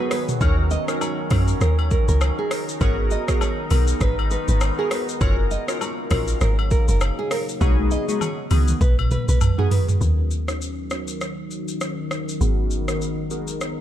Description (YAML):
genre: afrobeats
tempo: 100 BPM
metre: 4/4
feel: swing 58% on 16ths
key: unclear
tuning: A4 = 439 Hz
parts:
  - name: glassy digital keys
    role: accompaniment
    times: 0.0-13.5 s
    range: B3 to A#4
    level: -28 LUFS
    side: equal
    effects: chorus, phaser, low-pass filter
  - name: deep dark ambient pad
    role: sustained chords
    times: 0.0-13.8 s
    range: C#3 to E#5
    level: -29 LUFS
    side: left 2 dB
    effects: chorus, built-in reverb, low-pass filter
  - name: nylon-string guitar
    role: riff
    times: 0.0-9.8 s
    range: G#4 to D#5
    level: -29 LUFS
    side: right 4 dB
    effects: tape echo
  - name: afro-pop drum kit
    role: drums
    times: 0.1-13.8 s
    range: hi-hat, kick drum, rim click, shaker, toms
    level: -24 LUFS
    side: equal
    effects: overdrive
  - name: deep log drum bass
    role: bass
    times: 0.4-13.8 s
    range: F#1 to F#2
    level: -20 LUFS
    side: equal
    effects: none
  - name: agogo bells and woodblock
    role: percussion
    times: 0.4-9.6 s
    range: none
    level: -34 LUFS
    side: left 10 dB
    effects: none
room: digital ambience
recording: dark, warm production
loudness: -19 LUFS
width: side -11 dB against mid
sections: 0.0-10.0 A section; 10.0-13.8 B section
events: drum fill 7.6-10.0; filter sweep 10.0-13.8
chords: 0.4 D#m7; 2.8 G#m9; 5.2 F#maj7; 7.6 B6; 10.0 D#m7; 12.4 G#m9